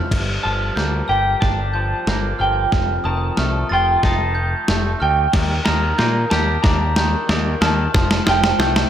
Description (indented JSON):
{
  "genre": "post-rock",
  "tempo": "92 BPM",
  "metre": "4/4",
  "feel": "straight",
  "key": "G minor",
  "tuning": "A4 = 440 Hz",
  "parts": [
    { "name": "glockenspiel with soft plastic mallets", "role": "arpeggios", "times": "0.0-8.9 s", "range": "Eb6 to Bb7", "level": "-28 LUFS", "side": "right 2 dB", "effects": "slapback echo" },
    { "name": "twangy electric guitar", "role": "arpeggios", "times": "0.0-8.9 s", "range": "F2 to G4", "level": "-25 LUFS", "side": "left 2 dB", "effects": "slapback echo" },
    { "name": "modern bright picked electric bass", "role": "bass", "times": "0.1-8.8 s", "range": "F1 to Bb2", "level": "-21 LUFS", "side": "equal", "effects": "none" },
    { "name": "dusty soul sampler-style drum kit", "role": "drums", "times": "0.1-8.9 s", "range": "crash cymbal, kick drum, snare drum", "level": "-20 LUFS", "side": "equal", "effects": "none" },
    { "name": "electric slide guitar", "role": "melody", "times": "0.4-8.9 s", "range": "G5 to Bb5", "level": "-21 LUFS", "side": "right 2 dB", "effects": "slapback echo" }
  ],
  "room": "moderate lush hall reverb, RT60 2.6 s",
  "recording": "big arena sound",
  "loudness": "-16 LUFS",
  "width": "side -10 dB against mid",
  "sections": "0.1-8.9 A section",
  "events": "build-up 0.1-8.9; drum fill 0.1-8.9",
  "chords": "0.1 Gm7; 2.7 F7; 5.3 Ebmaj7; 7.9 Dm/F"
}